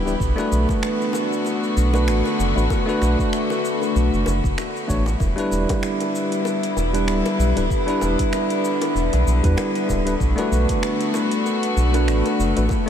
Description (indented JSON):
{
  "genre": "sunset chillout",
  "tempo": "96 BPM",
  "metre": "4/4",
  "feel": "swing 56% on 16ths",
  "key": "E minor",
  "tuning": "A4 = 440 Hz",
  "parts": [
    { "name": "bell-like tine electric piano", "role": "accompaniment", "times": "0.0-12.9 s", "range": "G3 to C#5", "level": "-22 LUFS", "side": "equal", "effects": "auto-pan, ping-pong delay" },
    { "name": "rich chamber string section", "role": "sustained chords", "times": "0.0-12.9 s", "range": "D3 to G4", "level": "-24 LUFS", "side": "left 1 dB", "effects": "none" },
    { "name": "round analog bass", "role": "bass", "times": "0.0-12.7 s", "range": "D1 to E2", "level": "-20 LUFS", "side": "equal", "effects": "none" },
    { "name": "deep house drum kit", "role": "drums", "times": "0.1-12.8 s", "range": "cabasa, finger snaps, hi-hat", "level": "-33 LUFS", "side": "equal", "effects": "studio reverb" },
    { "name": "electronic kick drum", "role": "drums", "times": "0.2-12.8 s", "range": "none", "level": "-24 LUFS", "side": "equal", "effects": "studio reverb" },
    { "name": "bongos", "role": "percussion", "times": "0.4-12.8 s", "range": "none", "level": "-34 LUFS", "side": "left 5 dB", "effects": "none" }
  ],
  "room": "moderate huge ambient reverb, RT60 7.7 s",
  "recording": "dreamy mix soaked in reverb",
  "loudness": "-18 LUFS",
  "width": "side -9 dB against mid",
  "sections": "0.0-12.9 A section",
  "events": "none",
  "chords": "0.2 Bm7; 5.2 Em7; 10.2 Bm7"
}